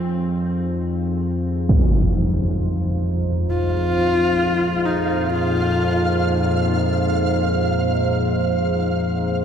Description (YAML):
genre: dark ambient drone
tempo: free time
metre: none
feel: none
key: unclear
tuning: A4 = 441 Hz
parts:
  - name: deep dark ambient pad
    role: sustained chords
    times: 0.0-9.4 s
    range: Bb2 to C5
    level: -24 LUFS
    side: right 1 dB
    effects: chorus, built-in reverb
  - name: analog drone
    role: drone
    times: 0.0-9.4 s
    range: F2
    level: -22 LUFS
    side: equal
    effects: chorus
  - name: impact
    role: percussion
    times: 1.7-1.9 s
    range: none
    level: -22 LUFS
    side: equal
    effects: low-pass filter on sfx
  - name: rich horsehead fiddle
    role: melody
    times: 3.5-6.7 s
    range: Eb4 to F4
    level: -25 LUFS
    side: left 2 dB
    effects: tape echo
  - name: flickering grainy texture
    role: texture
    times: 3.5-9.4 s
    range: F5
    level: -28 LUFS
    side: right 1 dB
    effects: built-in reverb
room: wet cathedral reverb, RT60 6.5 s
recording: none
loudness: -18 LUFS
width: side -8 dB against mid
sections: 0.0-9.4 A section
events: fade-in on ambient pad 0.0-9.4; filter sweep on synth drone 0.0-9.4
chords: 0.0 Fm; 3.5 Bb5